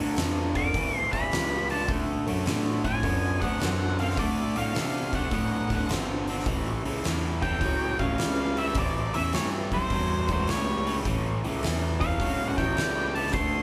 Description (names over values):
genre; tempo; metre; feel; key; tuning
blues rock power trio and southern rock; 105 BPM; 4/4; swing 67% on 8ths; unclear; A4 = 438 Hz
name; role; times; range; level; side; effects
raw garage guitar; riff; 0.0-13.6 s; G2 to C4; -34 LUFS; equal; overdrive
fuzz picked electric bass; bass; 0.0-13.6 s; G1 to C3; -33 LUFS; equal; overdrive
oversized low-tuned drum kit; drums; 0.2-13.5 s; hi-hat, kick drum, snare drum; -33 LUFS; equal; none
octave-fuzz lead guitar; melody; 0.6-13.6 s; B#4 to D6; -33 LUFS; equal; distortion
lightly driven lead guitar; second line; 0.6-13.6 s; G3 to A#4; -39 LUFS; equal; none
room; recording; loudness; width
moderate large studio reverb, RT60 1.1 s; band playing live in one room; -27 LUFS; mono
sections
0.0-13.6 A section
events
none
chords
0.0 G7#9; 1.9 D7#9; 6.5 A7